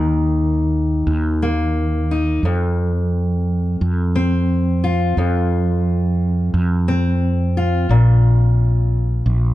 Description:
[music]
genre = acoustic folk duo or small band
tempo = 88 BPM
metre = 4/4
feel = straight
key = unclear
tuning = A4 = 442 Hz
[part]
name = fingerpicked steel-string acoustic guitar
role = accompaniment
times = 0.0-9.5 s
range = F2 to F4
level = -19 LUFS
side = left 1 dB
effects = none
[part]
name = mellow fretless electric bass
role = bass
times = 0.0-9.5 s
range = Bb1 to F2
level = -18 LUFS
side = right 1 dB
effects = none
[sound]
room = light reverb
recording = dark, warm production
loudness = -15 LUFS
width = side -15 dB against mid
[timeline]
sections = 0.0-9.5 A section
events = none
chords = 0.0 Eb5; 2.4 F5; 7.9 Bb5

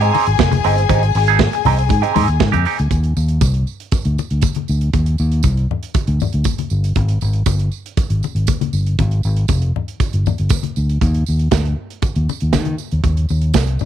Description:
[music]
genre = disco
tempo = 118 BPM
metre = 4/4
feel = straight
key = Eb major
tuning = A4 = 440 Hz
[part]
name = rich studio violin section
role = second line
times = 0.0-2.9 s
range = Ab4 to Ab5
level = -20 LUFS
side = left 13 dB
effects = none
[part]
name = clean electric guitar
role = accompaniment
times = 0.0-2.8 s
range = C4 to Ab4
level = -18 LUFS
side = right 14 dB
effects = wah
[part]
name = fingered electric bass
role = bass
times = 0.0-13.8 s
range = F1 to Eb3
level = -16 LUFS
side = equal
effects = none
[part]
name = modern studio drum kit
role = drums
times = 0.0-13.8 s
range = hi-hat, kick drum, snare drum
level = -20 LUFS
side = right 3 dB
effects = none
[part]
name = congas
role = percussion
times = 0.1-13.9 s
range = none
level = -22 LUFS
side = left 8 dB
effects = none
[part]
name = tambourine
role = percussion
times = 2.9-13.9 s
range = none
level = -33 LUFS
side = right 18 dB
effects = none
[sound]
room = small room ambience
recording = 1960s-style stereo with parts hard left and right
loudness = -14 LUFS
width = side -10 dB against mid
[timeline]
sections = 0.0-2.9 A section; 2.9-13.9 B section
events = none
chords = 0.0 Abmaj7; 2.9 Ebmaj7(no3); 7.0 Fmadd9 (rootless); 11.0 N.C.

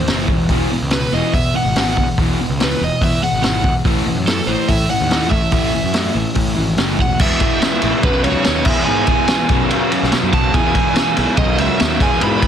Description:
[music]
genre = indie rock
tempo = 143 BPM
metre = 4/4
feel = straight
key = E major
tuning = A4 = 440 Hz
[part]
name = overdriven electric guitar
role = melody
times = 0.0-12.5 s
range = A4 to B5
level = -21 LUFS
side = right 3 dB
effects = plate reverb, digital delay
[part]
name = fuzz guitar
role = riff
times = 0.0-12.5 s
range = E2 to G#4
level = -19 LUFS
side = left 1 dB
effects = distortion
[part]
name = fuzz picked electric bass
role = bass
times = 0.0-12.4 s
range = E1 to B2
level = -22 LUFS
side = equal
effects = overdrive
[part]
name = vintage drum kit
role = drums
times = 0.1-12.5 s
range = crash cymbal, hi-hat, kick drum, ride cymbal, snare drum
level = -18 LUFS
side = equal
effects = none
[sound]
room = light reverb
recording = dense, heavily limited modern master, faint mains hum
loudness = -14 LUFS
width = side -9 dB against mid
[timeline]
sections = 0.0-7.2 A section; 7.2-12.5 B section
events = none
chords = 0.0 Am; 0.5 E; 3.9 A5; 7.2 E; 8.0 Bsus2; 8.7 E; 9.5 Bsus2; 10.5 E; 11.4 Bsus2

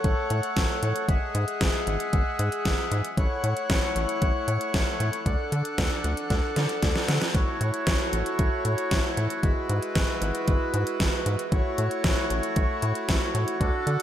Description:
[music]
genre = synth-pop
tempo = 115 BPM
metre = 4/4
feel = straight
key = A major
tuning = A4 = 440 Hz
[part]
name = accordion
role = sustained chords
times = 0.0-14.0 s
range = D3 to F#5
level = -28 LUFS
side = equal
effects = stereo widening
[part]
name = rubbery square bass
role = bass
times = 0.0-14.0 s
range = G#1 to D3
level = -27 LUFS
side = equal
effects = none
[part]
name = pop drum kit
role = drums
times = 0.0-14.0 s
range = hi-hat, kick drum, snare drum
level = -26 LUFS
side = equal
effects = overdrive
[sound]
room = wet lush hall reverb, RT60 1.8 s, digital ambience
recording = big arena sound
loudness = -23 LUFS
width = side -11 dB against mid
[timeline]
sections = 0.0-14.0 A section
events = drum fill 6.3-7.3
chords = 0.0 A6; 1.1 Eadd9/G#; 3.2 A6; 5.3 D; 7.3 A6; 9.4 Eadd9/G#; 11.5 A6

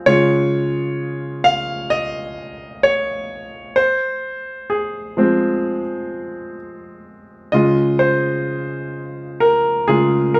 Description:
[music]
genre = pop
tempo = 64 BPM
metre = 4/4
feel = straight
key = unclear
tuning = A4 = 440 Hz
[part]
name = clear concert grand piano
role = solo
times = 0.0-10.4 s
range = Db3 to F5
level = -19 LUFS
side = equal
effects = none
[sound]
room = moderate studio reverb, RT60 0.7 s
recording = band playing live in one room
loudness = -19 LUFS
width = mono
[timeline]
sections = 0.0-7.5 A section; 7.5-10.4 B section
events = grand piano solo 0.0-7.5, 7.5-10.4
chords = 0.1 Db; 3.8 Fm; 7.5 Db

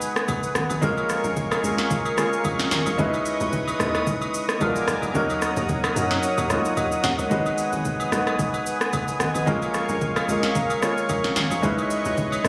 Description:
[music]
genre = amapiano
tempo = 111 BPM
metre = 4/4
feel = swing 55% on 16ths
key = G# minor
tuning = A4 = 440 Hz
[part]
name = warm concert grand piano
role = accompaniment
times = 0.0-12.5 s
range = F#3 to A#5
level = -28 LUFS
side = equal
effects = none
[part]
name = warm analog pad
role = sustained chords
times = 0.0-12.5 s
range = B3 to D#6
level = -30 LUFS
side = equal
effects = chorus, sidechain pumping
[part]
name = smooth R&B drum kit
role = drums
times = 0.0-12.5 s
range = kick drum, rim click, shaker, snare drum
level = -29 LUFS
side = equal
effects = overdrive
[part]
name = hollow log drum bass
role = bass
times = 0.3-12.5 s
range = F#1 to F#2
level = -33 LUFS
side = equal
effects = none
[part]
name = agogo bells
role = percussion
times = 0.3-12.4 s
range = none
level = -35 LUFS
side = equal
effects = none
[sound]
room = light reverb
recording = recorded on a phone in the room, studio reverb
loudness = -23 LUFS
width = mono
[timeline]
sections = 0.0-12.5 A section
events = kick muted 6.2-7.3; grand piano fill 10.0-11.6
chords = 0.0 G#m7; 0.8 A#m7; 3.0 C#m9; 4.6 A#7b9; 5.1 D#m7; 7.3 G#m7; 9.5 A#m7; 11.6 C#m9

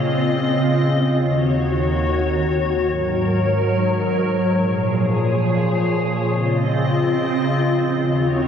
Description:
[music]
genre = hip hop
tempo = free time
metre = none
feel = none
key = Db major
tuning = A4 = 437 Hz
[part]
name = glassy FM pad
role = solo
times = 0.0-8.5 s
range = Eb2 to Eb5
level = -17 LUFS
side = equal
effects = ensemble chorus, built-in reverb
[sound]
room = moderate huge ambient reverb, RT60 7.7 s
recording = none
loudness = -17 LUFS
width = side -8 dB against mid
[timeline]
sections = 0.0-6.3 A section; 6.3-8.5 B section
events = none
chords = 0.0 Dbmaj9; 1.2 Ebm7; 2.9 Ab9sus4; 4.6 Bbm7; 6.3 Dbmaj9

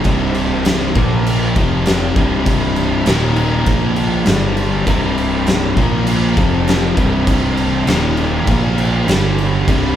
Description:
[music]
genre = stoner and doom metal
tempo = 100 BPM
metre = 4/4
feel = straight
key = C minor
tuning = A4 = 440 Hz
[part]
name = distorted electric guitar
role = riff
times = 0.0-10.0 s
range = C2 to Bb3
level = -21 LUFS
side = left 1 dB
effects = distortion
[part]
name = thick fuzz guitar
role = riff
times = 0.0-10.0 s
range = C2 to Bb3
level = -21 LUFS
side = left 5 dB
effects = distortion
[part]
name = thick fuzz guitar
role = riff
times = 0.0-10.0 s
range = C2 to Bb3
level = -21 LUFS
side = right 5 dB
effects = distortion
[part]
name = oversized low-tuned drum kit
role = drums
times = 0.0-9.8 s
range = crash cymbal, kick drum, snare drum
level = -17 LUFS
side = equal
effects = none
[part]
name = growling fingered electric bass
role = bass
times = 0.1-10.0 s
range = C1 to Bb1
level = -22 LUFS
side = equal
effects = overdrive
[sound]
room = light reverb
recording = band playing live in one room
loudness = -13 LUFS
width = side -10 dB against mid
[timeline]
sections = 0.0-10.0 A section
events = none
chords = 0.1 C5; 1.0 Bb5; 1.6 F5; 2.2 C5; 3.1 Eb5; 3.7 Bb5; 4.3 G5; 4.9 C5; 5.8 Bb5; 6.4 F5; 7.0 C5; 7.9 Eb5; 8.5 Bb5; 9.1 G5

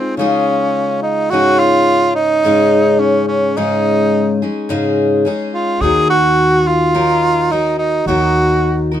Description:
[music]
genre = folk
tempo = 106 BPM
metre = 4/4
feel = straight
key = unclear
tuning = A4 = 440 Hz
[part]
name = warm tenor saxophone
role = melody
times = 0.0-8.9 s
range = C4 to Ab4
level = -14 LUFS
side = right 2 dB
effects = none
[part]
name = picked steel-string acoustic guitar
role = accompaniment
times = 0.0-9.0 s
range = Ab2 to Bb4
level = -16 LUFS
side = left 3 dB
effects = none
[part]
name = upright bass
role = bass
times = 5.8-9.0 s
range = Eb2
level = -20 LUFS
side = equal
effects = none
[sound]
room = light reverb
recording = minimal, uncompressed stereo recording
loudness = -12 LUFS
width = side -10 dB against mid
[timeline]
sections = 0.0-9.0 A section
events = none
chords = 0.0 Dbadd9; 1.3 Absus4; 5.8 Ebm

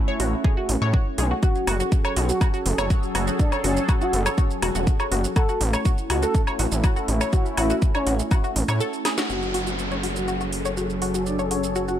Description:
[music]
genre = melodic techno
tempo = 122 BPM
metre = 4/4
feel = straight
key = F# minor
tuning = A4 = 441 Hz
[part]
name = sweeping resonant pad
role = sustained chords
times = 0.0-12.0 s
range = F#3 to A4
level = -30 LUFS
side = right 1 dB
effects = chorus, sidechain pumping
[part]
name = analog pluck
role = arpeggios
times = 0.1-12.0 s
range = F#4 to C#5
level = -28 LUFS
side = left 1 dB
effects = chorus, phaser, sidechain pumping, ping-pong delay
[part]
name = gritty driven synth bass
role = bass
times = 0.2-12.0 s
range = E1 to A2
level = -25 LUFS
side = equal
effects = sidechain pumping
[part]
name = house drum kit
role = drums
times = 0.2-12.0 s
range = hi-hat, shaker, snare drum, woodblock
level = -29 LUFS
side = equal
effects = none
[part]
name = electronic kick drum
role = drums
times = 0.4-8.4 s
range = none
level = -21 LUFS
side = equal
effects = none
[part]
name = expressive portamento lead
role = melody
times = 1.4-12.0 s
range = C#4 to A4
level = -30 LUFS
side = left 1 dB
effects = chorus, sidechain pumping, ping-pong delay
[part]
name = warm chamber violin section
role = second line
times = 9.3-12.0 s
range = C#5 to F#5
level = -35 LUFS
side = left 2 dB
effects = sidechain pumping, low-pass filter, ping-pong delay
[part]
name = downlifter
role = sound effects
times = 9.3-12.0 s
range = none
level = -32 LUFS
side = equal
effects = none
[sound]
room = light reverb, digital ambience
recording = none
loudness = -20 LUFS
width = side -10 dB against mid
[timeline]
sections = 0.0-9.3 A section; 9.3-12.0 B section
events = drum fill 9.1; band accent 9.2; filter sweep on analog synth lead 9.3-12.0; filter sweep on violin section 9.3-12.0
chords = 0.0 A; 1.4 F#m; 5.4 A; 9.3 F#m

